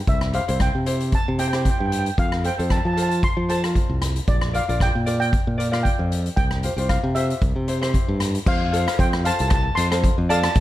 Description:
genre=calypso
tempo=114 BPM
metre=4/4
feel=swing 54% on 16ths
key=F major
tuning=A4 = 440 Hz
part: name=steel pan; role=melody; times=0.1-10.6 s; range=C5 to C6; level=-26 LUFS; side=equal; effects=none
part: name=modern bright fingered electric bass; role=bass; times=0.1-10.6 s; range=Bb1 to F3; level=-23 LUFS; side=equal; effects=none
part: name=street-band drum kit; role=drums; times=0.1-10.6 s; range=crash cymbal, hi-hat, kick drum, rim click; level=-23 LUFS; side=equal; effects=none
part: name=ukulele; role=accompaniment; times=0.3-10.6 s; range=E4 to D5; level=-29 LUFS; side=equal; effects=none
room=small room ambience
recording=none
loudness=-19 LUFS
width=side -14 dB against mid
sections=0.0-8.5 A section; 8.5-10.6 B section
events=none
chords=0.0 C; 2.2 F; 4.3 Bb6; 6.4 Csus4; 7.4 C; 8.5 F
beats=| 0.08 0.61 1.13 1.66 | 2.18 2.70 3.23 3.75 | 4.28 4.80 5.32 5.85 | 6.37 6.90 7.42 7.94 | 8.47 8.99 9.51 10.04 | 10.56

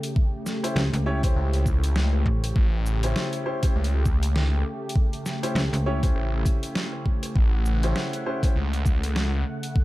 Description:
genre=glitch hop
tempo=100 BPM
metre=4/4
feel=swing 58% on 16ths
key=unclear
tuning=A4 = 441 Hz
part: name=warm analog pad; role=sustained chords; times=0.0-9.8 s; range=C#3 to F#5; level=-33 LUFS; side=equal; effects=chorus, sidechain pumping
part: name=dubstep drum kit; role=drums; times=0.0-9.7 s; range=hi-hat, rim click, shaker, snare drum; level=-31 LUFS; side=equal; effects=overdrive, studio reverb
part: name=electronic kick drum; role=drums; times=0.2-9.8 s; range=none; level=-22 LUFS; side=equal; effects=overdrive, studio reverb
part: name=warm baby grand piano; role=stabs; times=0.6-8.5 s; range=C#4 to C#5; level=-31 LUFS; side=left 1 dB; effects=sidechain pumping, tape echo
part: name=slap-like FM bass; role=bass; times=0.8-6.1 s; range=A1 to C#2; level=-24 LUFS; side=equal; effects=none
part: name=phased detuned saw bass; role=bass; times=1.4-9.4 s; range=A1 to C#2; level=-23 LUFS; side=equal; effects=phaser
room=digital ambience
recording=dark, warm production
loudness=-22 LUFS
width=side -18 dB against mid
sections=0.0-9.8 A section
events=none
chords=0.0 A7#9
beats=| 0.16 0.76 1.36 1.96 | 2.56 3.16 3.76 4.36 | 4.96 5.56 6.16 6.76 | 7.36 7.96 8.56 9.16 | 9.76

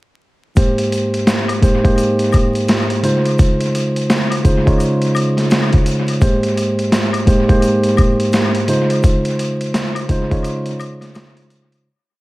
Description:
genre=hip hop, boom-bap hip-hop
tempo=85 BPM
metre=4/4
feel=swing 60% on 16ths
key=unclear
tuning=A4 = 444 Hz
part: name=mellow tine electric piano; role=accompaniment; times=0.6-11.9 s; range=Ab2 to Db5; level=-16 LUFS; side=right 1 dB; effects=cassette tape, high-pass filter, low-pass filter
part: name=boom bap sampler-style drum kit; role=drums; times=0.6-11.9 s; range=hi-hat, kick drum, snare drum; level=-16 LUFS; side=equal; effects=dub echo
part: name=tube shaker and woodblock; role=percussion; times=0.6-11.7 s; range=none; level=-30 LUFS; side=left 6 dB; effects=dub echo
room=light reverb, digital ambience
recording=echo-heavy mix, vinyl crackle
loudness=-13 LUFS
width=side -19 dB against mid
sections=0.6-11.9 hook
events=fade-out 9.0-11.9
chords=0.6 Abmaj7; 3.0 Dbmaj7; 6.2 Abmaj7; 8.7 Dbmaj7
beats=| 0.57 1.27 1.98 2.69 | 3.39 4.10 4.80 5.51 | 6.21 6.92 7.63 8.33 | 9.04 9.74 10.45 11.16

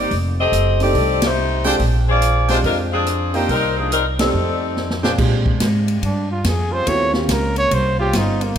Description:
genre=jazz, big band swing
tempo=142 BPM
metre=4/4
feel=swing 65% on 8ths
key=Bb mixolydian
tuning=A4 = 441 Hz
part: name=clear saxophone section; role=melody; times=0.0-5.0 s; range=F3 to Eb5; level=-19 LUFS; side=left 2 dB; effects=none
part: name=warm upright piano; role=accompaniment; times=0.0-8.1 s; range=Bb2 to D5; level=-24 LUFS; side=right 1 dB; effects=none
part: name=upright bass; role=bass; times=0.0-8.6 s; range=F1 to Bb2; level=-20 LUFS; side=equal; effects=none
part: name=swinging big-band drum kit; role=drums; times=0.1-8.6 s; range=crash cymbal, hi-hat, kick drum, ride cymbal, rim click, snare drum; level=-24 LUFS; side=equal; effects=none
part: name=bright trumpet section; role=stabs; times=1.6-5.1 s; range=D4 to G5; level=-25 LUFS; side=right 1 dB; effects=none
part: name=warm trumpet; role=melody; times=6.0-8.6 s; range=Bb3 to Db5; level=-20 LUFS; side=right 1 dB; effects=none
part: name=warm trombone section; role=sustained chords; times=6.7-8.5 s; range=Db3 to F4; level=-27 LUFS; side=left 1 dB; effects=none
room=light reverb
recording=none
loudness=-15 LUFS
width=side -8 dB against mid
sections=0.0-5.2 A section; 5.2-8.6 B section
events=band accent 1.2, 4.1; drum fill 4.8-5.2; trumpet solo 5.2-8.6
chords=0.1 F13; 1.8 Bb13; 3.5 Cm7; 4.3 F13; 5.2 Bb13; 6.9 Eb13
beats=| 0.11 0.53 0.95 1.37 | 1.80 2.22 2.64 3.06 | 3.49 3.91 4.33 4.76 | 5.18 5.60 6.02 6.45 | 6.87 7.29 7.71 8.14 | 8.56

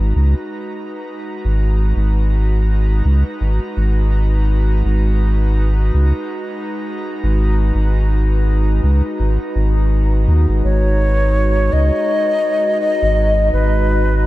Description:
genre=ambient dub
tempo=83 BPM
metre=4/4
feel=swing 58% on 16ths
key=G# minor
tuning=A4 = 440 Hz
part: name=airy breathy pad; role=sustained chords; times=0.0-14.3 s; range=G#3 to A#5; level=-23 LUFS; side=equal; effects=chorus
part: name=warm sub bass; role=bass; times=0.0-14.3 s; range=G#1 to D#2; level=-14 LUFS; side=equal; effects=none
part: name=wooden flute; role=melody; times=10.6-14.3 s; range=B4 to D#5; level=-17 LUFS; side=equal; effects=dub echo
room=small room ambience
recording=none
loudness=-14 LUFS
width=side -17 dB against mid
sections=0.0-14.3 A section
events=fade-in on analog synth pad 0.0-14.3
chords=0.0 G#m7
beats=0.52 1.25 | 1.97 2.69 3.41 4.14 | 4.86 5.58 6.30 7.03 | 7.75 8.47 9.20 9.92 | 10.64 11.37 12.09 12.81 | 13.53 14.26

